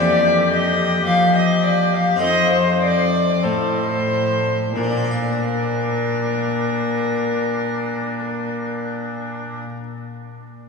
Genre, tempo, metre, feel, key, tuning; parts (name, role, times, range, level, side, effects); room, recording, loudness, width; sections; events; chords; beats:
classical, baroque-style sonata movement with continuo; 44-57 BPM; 4/4; rubato; Bb major; A4 = 443 Hz
warm oboe; melody; 0.0-9.6 s; D4 to C5; -25 LUFS; left 4 dB
warm violin; second line; 0.0-9.6 s; Bb4 to F5; -20 LUFS; left 1 dB
harpsichord; accompaniment; 0.0-10.0 s; F2 to F5; -27 LUFS; left 3 dB
rich cello; bass; 0.0-9.6 s; F2 to F3; -23 LUFS; equal
wet cathedral reverb, RT60 5.4 s; recorded in a church or concert hall, small room ambience; -17 LUFS; side -4 dB against mid
0.0-4.8 A section; 4.8-10.0 B section
slowing down 0.0-4.8
0.0 Bb5/F; 2.2 F7; 4.8 Bb
1.06 2.21 3.44 | 4.76 6.09 7.41 8.71